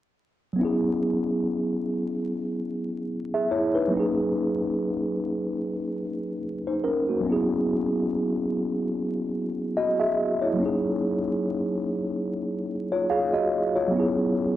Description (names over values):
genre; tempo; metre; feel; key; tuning
hip hop; 72 BPM; 4/4; swing 56% on 16ths; unclear; A4 = 440 Hz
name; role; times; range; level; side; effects
mellow tine electric piano; solo; 0.5-14.6 s; F#3 to E#5; -24 LUFS; equal; medium stereo tremolo
room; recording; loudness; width
wet studio reverb, RT60 0.6 s; worn, warbling old tape, cassette tape, vinyl crackle, warbly pitch drift; -24 LUFS; side -13 dB against mid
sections
0.6-7.3 A section; 7.3-14.6 B section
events
none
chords
0.6 F#9sus4; 3.9 G#9sus4; 7.3 F#9sus4; 10.6 G#9sus4; 13.9 F#9sus4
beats
| 0.58 1.42 2.25 3.08 | 3.92 4.75 5.58 6.42 | 7.25 8.08 8.92 9.75 | 10.58 11.42 12.25 13.08 | 13.92